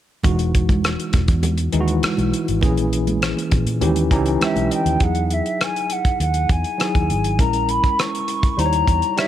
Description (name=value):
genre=lush 1970s-style soul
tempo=101 BPM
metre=4/4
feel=straight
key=E major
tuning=A4 = 437 Hz
part: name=tine electric piano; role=accompaniment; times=0.2-9.3 s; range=E3 to A#5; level=-22 LUFS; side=left 1 dB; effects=overdrive, medium stereo tremolo
part: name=vintage muted fingered electric bass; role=bass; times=0.2-9.0 s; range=E1 to A#2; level=-22 LUFS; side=equal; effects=none
part: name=damped 70s drum kit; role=drums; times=0.2-9.3 s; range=hi-hat, kick drum, rim click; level=-21 LUFS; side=equal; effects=none
part: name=congas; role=percussion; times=0.2-4.7 s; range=none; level=-28 LUFS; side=right 5 dB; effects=none
part: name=mellow hollow silver concert flute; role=melody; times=4.4-9.3 s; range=E5 to C#6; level=-22 LUFS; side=left 1 dB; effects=analog delay
room=studio ambience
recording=none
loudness=-17 LUFS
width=side -11 dB against mid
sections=0.2-5.0 A section; 5.0-9.3 B section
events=tine electric piano fill 3.8-5.0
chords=0.2 Emaj9; 2.6 A#m7b5; 3.8 D#7b9; 5.0 Emaj9; 7.4 A#m7b5; 8.6 D#7b9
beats=| 0.25 0.84 1.44 2.03 | 2.63 3.22 3.82 4.41 | 5.01 5.61 6.20 6.80 | 7.39 7.99 8.58 9.18